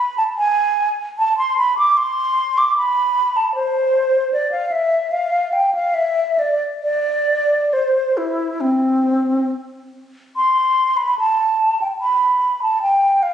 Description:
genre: classical, baroque-style fantasia for unaccompanied flute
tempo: 66-77 BPM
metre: 4/4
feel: rubato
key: C major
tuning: A4 = 441 Hz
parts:
  - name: mellow concert flute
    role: solo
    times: 0.0-13.3 s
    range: C4 to D6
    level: -16 LUFS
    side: equal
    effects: none
room: wet recital hall reverb, RT60 1.6 s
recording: recorded on a phone in the room, studio reverb, compression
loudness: -16 LUFS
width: side -9 dB against mid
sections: 0.0-10.4 A section; 10.4-13.3 B section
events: none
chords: none

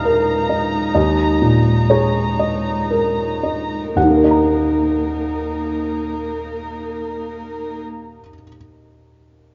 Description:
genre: neoclassical piano and strings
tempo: 37-45 BPM (dotted quarters)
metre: 6/8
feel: rubato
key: Eb minor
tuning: A4 = 437 Hz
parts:
  - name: felt-muted upright piano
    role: accompaniment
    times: 0.0-9.5 s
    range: Eb2 to Bb5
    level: -19 LUFS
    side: equal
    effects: none
  - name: warm chamber string section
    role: sustained chords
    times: 0.0-7.8 s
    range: Ab3 to Bb5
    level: -25 LUFS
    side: equal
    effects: none
room: moderate plate reverb, RT60 2.8 s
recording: nothing above 7.5 kHz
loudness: -18 LUFS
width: mono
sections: 0.0-4.0 A section; 4.0-7.1 B section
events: slowing down 0.0-4.0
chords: 0.0 Abmadd9/Eb; 4.0 Ebm

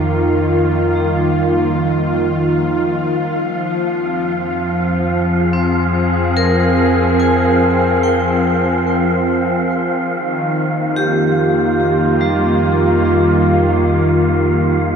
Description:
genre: ambient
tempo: 72 BPM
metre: 4/4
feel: straight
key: unclear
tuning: A4 = 440 Hz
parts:
  - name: warm analog pad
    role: sustained chords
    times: 0.0-15.0 s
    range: Eb3 to Ab4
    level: -15 LUFS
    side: equal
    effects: lush chorus
  - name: deep rumbling drone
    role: bass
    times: 0.0-15.0 s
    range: F2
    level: -22 LUFS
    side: equal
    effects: built-in reverb
  - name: bowed-like drone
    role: drone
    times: 0.0-15.0 s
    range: F3 to F4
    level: -26 LUFS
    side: equal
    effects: built-in reverb
  - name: wind-like tuned noise texture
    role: texture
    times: 0.0-15.0 s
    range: F5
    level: -23 LUFS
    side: right 1 dB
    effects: built-in reverb
  - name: vibraphone with hard mallets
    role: arpeggios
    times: 0.9-15.0 s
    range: G3 to Ab5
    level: -21 LUFS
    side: right 1 dB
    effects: tape echo
room: wet huge ambient reverb, RT60 8.1 s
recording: none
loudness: -13 LUFS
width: side -7 dB against mid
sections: 0.0-15.0 A section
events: fade-in on vibraphone 0.0-15.0; fade-in on synth drone 0.0-15.0; fade-in on synth texture 0.0-15.0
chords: 0.0 Ebadd9/F; 3.5 Fm; 10.1 Ebadd9/F

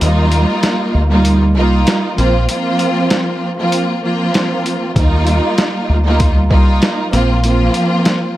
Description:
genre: hip hop, boom-bap hip-hop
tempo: 97 BPM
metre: 4/4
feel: swing 55% on 16ths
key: Bb major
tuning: A4 = 440 Hz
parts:
  - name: warm studio string section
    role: accompaniment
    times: 0.0-8.4 s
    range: F3 to F4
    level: -14 LUFS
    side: right 1 dB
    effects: none
  - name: deep dub fingered electric bass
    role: bass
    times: 0.0-7.7 s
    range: Bb1 to Eb2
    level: -14 LUFS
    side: equal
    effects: none
  - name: boom bap sampler-style drum kit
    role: drums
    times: 0.0-8.2 s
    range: hi-hat, kick drum, snare drum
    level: -16 LUFS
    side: equal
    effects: none
room: little or no reverb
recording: vinyl crackle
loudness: -12 LUFS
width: side -15 dB against mid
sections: 0.0-8.4 A section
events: break 0.0-5.0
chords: 0.0 Ebadd9; 2.2 Bbsus2; 5.0 Ebadd9; 7.1 Bbsus2

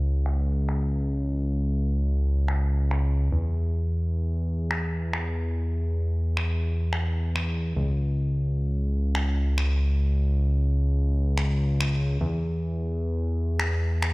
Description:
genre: nu-disco, nu disco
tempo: 108 BPM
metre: 4/4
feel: swing 55% on 16ths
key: C# minor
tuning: A4 = 440 Hz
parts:
  - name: fat analog bass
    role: bass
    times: 0.0-14.1 s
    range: C#2 to E2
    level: -23 LUFS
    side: equal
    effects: tube saturation
  - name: electronic finger snaps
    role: drums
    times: 0.3-14.1 s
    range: none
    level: -32 LUFS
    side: equal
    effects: overdrive, low-pass filter on hats, low-pass filter on snare, low-pass filter on cymbals, low-pass filter on room
room: little or no reverb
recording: played on a big sound system in a bare room, large studio reverb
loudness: -23 LUFS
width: side -24 dB against mid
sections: 0.0-14.1 A section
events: filter sweep on drum 0.0-14.1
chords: none

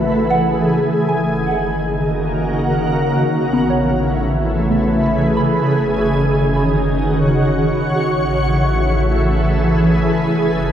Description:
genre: ambient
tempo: 77 BPM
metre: 3/4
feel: straight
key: unclear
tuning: A4 = 441 Hz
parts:
  - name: shimmering ambient pad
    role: sustained chords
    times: 0.0-10.7 s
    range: C#3 to Db5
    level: -15 LUFS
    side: equal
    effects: chorus, built-in reverb
  - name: soft synth bell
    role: arpeggios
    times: 0.0-9.1 s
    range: A3 to B5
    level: -23 LUFS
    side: equal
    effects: chorus, phaser, diffuse ambient delay
  - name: warm sub bass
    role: bass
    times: 0.0-10.7 s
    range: Gb1 to A1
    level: -23 LUFS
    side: equal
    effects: none
room: wet concert hall reverb, RT60 2.1 s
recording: none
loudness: -14 LUFS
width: side -10 dB against mid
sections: 0.0-10.7 A section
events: fade-in on sub bass 0.0-10.7; fade-out on synth bell 0.0-10.7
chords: 0.0 Amaj9; 1.0 Gb6; 3.3 Amaj9; 5.6 Gb5; 8.0 Amaj9

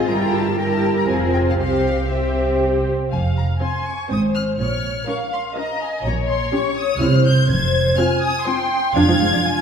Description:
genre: quick classical-period movement for string orchestra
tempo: 122 BPM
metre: 3/4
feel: straight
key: F minor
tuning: A4 = 443 Hz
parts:
  - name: warm symphonic violin section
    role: melody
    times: 0.0-9.6 s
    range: E5 to Ab6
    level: -25 LUFS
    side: left 3 dB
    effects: none
  - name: rich symphonic violin section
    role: second line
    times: 0.0-9.6 s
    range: G4 to Ab5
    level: -23 LUFS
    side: left 2 dB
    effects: none
  - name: rich symphonic viola section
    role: accompaniment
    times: 0.0-9.6 s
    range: F3 to C5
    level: -22 LUFS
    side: equal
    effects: none
  - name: rich symphonic cello section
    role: bass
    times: 0.0-9.4 s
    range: F2 to Bb4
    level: -25 LUFS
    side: right 2 dB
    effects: none
  - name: warm symphonic double bass section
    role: bass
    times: 0.1-9.2 s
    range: F1 to C2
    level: -22 LUFS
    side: right 2 dB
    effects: none
room: wet scoring stage reverb, RT60 1.8 s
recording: heard from further back in the room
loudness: -17 LUFS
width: side -7 dB against mid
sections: 0.0-3.1 A section; 3.1-9.6 B section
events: none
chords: 0.1 Edim/G; 1.1 Fm; 1.6 C; 3.1 Fm; 4.1 Ab; 4.6 Bbm; 6.0 Gdim/Bb; 7.0 C; 7.5 Fm; 9.0 Ddim/F (rootless)

